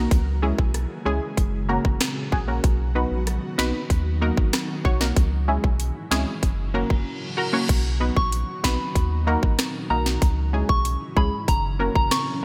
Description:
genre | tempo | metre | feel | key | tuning
dancehall | 95 BPM | 4/4 | straight | B major | A4 = 441 Hz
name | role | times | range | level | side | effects
analog pluck | accompaniment | 0.0-11.9 s | G#3 to C#5 | -30 LUFS | equal | chorus, phaser, sidechain pumping
ethereal airy pad | sustained chords | 0.0-12.4 s | C#3 to F#4 | -35 LUFS | equal | ensemble chorus, built-in reverb, sidechain pumping
warm sub bass | bass | 0.0-12.1 s | F#1 to D#2 | -27 LUFS | equal | none
island pop drum kit | drums | 0.1-12.3 s | crash cymbal, finger snaps, hi-hat, kick drum, rim click, snare drum | -25 LUFS | equal | gated reverb
reverse cymbal | sound effects | 6.8-7.7 s | none | -36 LUFS | equal | none
soft synth bell | melody | 8.2-12.4 s | A#5 to C#6 | -29 LUFS | equal | chorus, phaser
room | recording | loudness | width
light reverb | bright 1980s-style digital production | -23 LUFS | mono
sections
0.0-7.7 A section; 7.7-12.4 B section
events
reverse cymbal 6.8-7.7; drums muted 7.1-7.7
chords
0.1 C#m; 1.4 F#; 2.6 B; 3.9 D#m; 5.2 C#m; 6.4 F#; 7.7 B; 9.0 D#m; 10.2 C#m; 11.5 F#

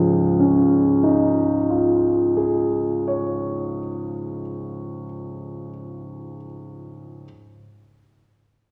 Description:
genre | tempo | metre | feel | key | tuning
classical, impressionist solo piano | 40 BPM | 5/4 | rubato | Db major | A4 = 440 Hz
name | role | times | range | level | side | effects
warm grand piano | solo | 0.0-7.3 s | Db2 to F6 | -22 LUFS | equal | none
room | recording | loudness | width
wet concert hall reverb, RT60 1.9 s | none | -20 LUFS | mono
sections
0.0-5.0 A section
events
none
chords
0.0 Dbadd9

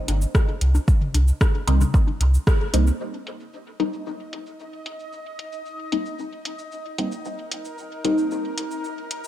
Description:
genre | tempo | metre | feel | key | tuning
dub techno | 113 BPM | 4/4 | straight | C minor | A4 = 444 Hz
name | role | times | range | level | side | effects
filtered dub chord stab | stabs | 0.0-9.3 s | G3 to Eb4 | -27 LUFS | left 1 dB | phaser, sidechain pumping, dub echo
warm sub bass | bass | 0.1-2.9 s | G1 to C2 | -17 LUFS | equal | sidechain pumping
deep house drum kit | drums | 0.1-9.3 s | cabasa, hi-hat, rim click | -30 LUFS | equal | overdrive, low-pass filter on perc, low-pass filter on snare, low-pass filter on hats, low-pass filter on room, dub echo
electronic bongos and toms | percussion | 0.1-2.8 s | none | -33 LUFS | left 3 dB | sidechain pumping on perc, sidechain pumping on toms, dub echo
electronic kick drum | drums | 0.3-2.6 s | none | -18 LUFS | equal | overdrive
bubbling stepped-filter texture | texture | 3.6-9.3 s | Eb4 to Eb5 | -35 LUFS | equal | chorus, built-in reverb, sidechain pumping
room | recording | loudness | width
light reverb, digital ambience | echo-heavy mix | -20 LUFS | side -13 dB against mid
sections
0.0-3.0 A section; 3.0-9.3 B section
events
band accent 2.5; filter sweep on synth stab 3.0-9.3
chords
0.0 Cm7

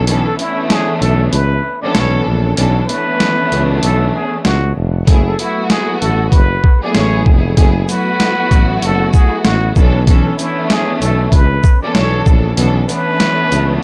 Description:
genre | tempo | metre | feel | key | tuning
hip hop, boom-bap hip-hop | 96 BPM | 4/4 | swing 61% on 16ths | unclear | A4 = 440 Hz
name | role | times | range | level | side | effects
warm studio string section | accompaniment | 0.0-13.8 s | E3 to A4 | -20 LUFS | equal | cassette tape, high-pass filter, low-pass filter
mellow tuba | bass | 0.0-13.8 s | E#1 to C#2 | -18 LUFS | equal | none
boom bap sampler-style drum kit | drums | 0.1-13.7 s | hi-hat, kick drum, shaker, snare drum | -15 LUFS | equal | overdrive
trumpet with plunger mute | melody | 0.3-13.8 s | E4 to D5 | -22 LUFS | equal | high-pass filter, low-pass filter
room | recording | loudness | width
little or no reverb | none | -13 LUFS | mono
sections
0.0-13.8 A section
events
break 0.0-5.1, 12.6-13.8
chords
0.0 Bm11; 5.1 F#m11; 9.8 Bm11

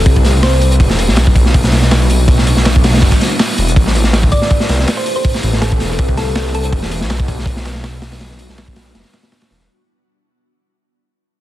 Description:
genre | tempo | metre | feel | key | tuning
drum and bass, jungle | 162 BPM | 4/4 | straight | unclear | A4 = 440 Hz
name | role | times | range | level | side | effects
thumb-piano-like synth pluck | melody | 0.0-0.8, 4.3-6.7 s | A4 to D5 | -22 LUFS | equal | chorus, phaser, cassette tape, dub echo
detuned saw bass | bass | 0.0-9.7 s | E1 to C2 | -14 LUFS | equal | none
crunchy breakbeat drum kit | drums | 0.1-9.7 s | hi-hat, kick drum, snare drum | -13 LUFS | equal | none
dusty soul sampler-style drum kit | drums | 0.1-9.7 s | hi-hat, snare drum | -25 LUFS | right 1 dB | high-pass filter on snare, high-pass filter on hats
ethereal airy pad | sustained chords | 0.2-9.7 s | G3 to B4 | -22 LUFS | equal | ensemble chorus, built-in reverb, tremolo, vintage 12-bit sampler grit
room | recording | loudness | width
light reverb, small room ambience | dense, heavily limited modern master, vinyl crackle | -10 LUFS | side -14 dB against mid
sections
0.0-9.7 A section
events
drop 0.0-9.7; fade-out 3.8-9.7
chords
0.0 Am7; 0.8 Em7; 3.8 Am7; 6.7 Em7

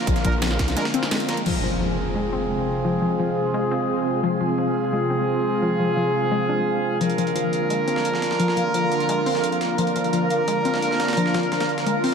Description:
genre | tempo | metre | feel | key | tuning
dark technical drum and bass | 173 BPM | 4/4 | straight | F dorian | A4 = 440 Hz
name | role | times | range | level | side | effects
sweeping resonant pad | sustained chords | 0.0-12.1 s | C3 to F4 | -28 LUFS | equal | chorus, sidechain pumping
warbly dusty pluck | arpeggios | 0.1-12.1 s | F3 to D4 | -26 LUFS | left 4 dB | chorus, sidechain pumping, diffuse ambient delay
growl bass | bass | 0.1-0.8 s | Bb1 to C2 | -25 LUFS | equal | chorus, tube saturation, sidechain pumping
breakbeat sampler-style drum kit | drums | 0.1-1.4, 7.0-12.1 s | hi-hat, snare drum | -32 LUFS | equal | high-pass filter on hats, high-pass filter on snare, high-pass filter on room
drum and bass drum kit | drums | 0.1-1.5 s | crash cymbal, hi-hat, snare drum | -30 LUFS | equal | overdrive
electronic kick drum | drums | 0.1-0.7 s | none | -23 LUFS | equal | none
clear brass ensemble | stabs | 0.2-12.1 s | C4 to Bb4 | -24 LUFS | right 2 dB | low-pass filter, diffuse ambient delay
impact and swell | sound effects | 1.5-2.8, 12.0-12.1 s | none | -31 LUFS | equal | none
granular cloud pad | texture | 2.7-12.1 s | C4 to F5 | -28 LUFS | right 1 dB | built-in reverb, wide subtle chorus, sidechain pumping
room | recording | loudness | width
wet huge ambient reverb, RT60 7.4 s | dreamy mix soaked in reverb | -20 LUFS | side -6 dB against mid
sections
0.0-1.5 A section; 1.5-12.1 B section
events
impact 1.5-2.8; filter sweep on brass ensemble 1.5-12.1; swell 12.0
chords
0.0 Bb; 1.5 Fm; 7.0 Bb

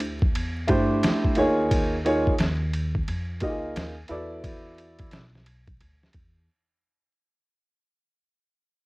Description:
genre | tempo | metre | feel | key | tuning
hip hop, jazz-hop | 88 BPM | 4/4 | swing 63% on 16ths | unclear | A4 = 439 Hz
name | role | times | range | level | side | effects
upright bass | bass | 0.0-6.5 s | B1 to G2 | -31 LUFS | equal | transformer saturation
lo-fi sampler-style drum kit | drums | 0.0-6.3 s | hi-hat, kick drum, ride cymbal, snare drum | -27 LUFS | equal | overdrive
warm upright piano | accompaniment | 0.7-5.2 s | A3 to D#5 | -24 LUFS | right 1 dB | cassette tape, plate reverb
room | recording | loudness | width
moderate booth ambience, RT60 0.3 s | home recording on cassette, vinyl crackle | -22 LUFS | side -22 dB against mid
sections
0.0-7.2 A section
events
fade-out 0.0-7.2; break 6.5-7.2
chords
0.0 D9sus4; 1.4 D#9sus4; 4.1 E9sus4

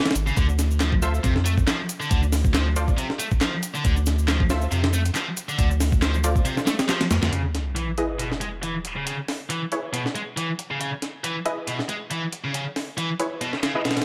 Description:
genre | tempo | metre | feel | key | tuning
breakbeat, breaks | 138 BPM | 4/4 | swing 55% on 16ths | unclear | A4 = 441 Hz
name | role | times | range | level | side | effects
high-gain distorted guitar | riff | 0.0-14.0 s | B2 to A3 | -30 LUFS | equal | distortion, vintage 12-bit sampler grit, low-pass filter, digital delay
breakbeat sampler-style drum kit | drums | 0.0-14.0 s | hi-hat, kick drum, snare drum | -27 LUFS | equal | high-pass filter on hats, studio reverb, high-pass filter on snare, high-pass filter on kick
saturated sub bass | bass | 0.2-7.3 s | G#1 to F2 | -24 LUFS | equal | none
electronic shaker and handclaps | drums | 0.2-7.3 s | none | -35 LUFS | equal | low-pass filter on perc, studio reverb, low-pass filter on snare, low-pass filter on room
orchestra-hit-like synth stab | stabs | 1.0-13.8 s | E4 to E5 | -32 LUFS | equal | built-in reverb, digital delay
sub drop | sound effects | 7.3-9.1 s | none | -32 LUFS | equal | none
room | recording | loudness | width
light reverb, digital ambience | none | -24 LUFS | mono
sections
0.0-7.3 A section; 7.3-14.0 B section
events
kick drops out 6.5-7.3; impact 7.3-9.1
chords
0.4 Dm7; 7.3 C#m9

